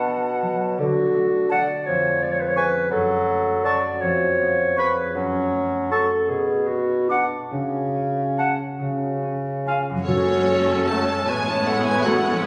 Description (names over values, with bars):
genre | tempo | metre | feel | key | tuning
classical, slow romantic movement for symphony orchestra | 46-58 BPM (dotted quarters) | 6/8 | rubato | F# minor | A4 = 440 Hz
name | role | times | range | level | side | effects
hollow concert flute | second line | 0.0-12.5 s | F#4 to D6 | -30 LUFS | equal | none
mellow clarinet | second line | 0.0-12.2 s | A3 to D5 | -26 LUFS | equal | none
warm oboe | second line | 0.0-12.5 s | A4 to B5 | -29 LUFS | equal | none
mellow bassoon | accompaniment | 0.0-12.2 s | B2 to F#3 | -28 LUFS | equal | none
concert harp | arpeggios | 0.0-12.5 s | E#2 to Cb5 | -32 LUFS | equal | none
clear studio violin section | melody | 10.1-12.5 s | Cb5 to A5 | -27 LUFS | equal | none
warm studio violin section | second line | 10.1-12.5 s | C#4 to A4 | -32 LUFS | equal | none
warm studio viola section | accompaniment | 10.1-12.5 s | G#3 to C#4 | -28 LUFS | equal | none
rich studio cello section | bass | 10.1-12.5 s | F#2 to A2 | -34 LUFS | equal | none
rich studio double bass section | bass | 10.1-12.5 s | F#1 to A1 | -35 LUFS | equal | none
timpani | percussion | 10.1-11.2 s | F#2 | -34 LUFS | equal | none
mellow French horn section | sustained chords | 10.9-12.2 s | A3 to F#4 | -30 LUFS | equal | none
room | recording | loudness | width
wet scoring stage reverb, RT60 1.6 s | recorded on a phone in the room, studio reverb, compression | -22 LUFS | mono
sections
0.0-10.1 A section; 10.1-12.5 B section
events
none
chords
0.0 Bm7; 0.8 D; 1.9 C#/E#; 2.9 F#m; 4.0 C#7/E#; 5.2 F#m; 6.3 Bm; 7.5 F#5/C#; 8.8 C#; 10.1 F#m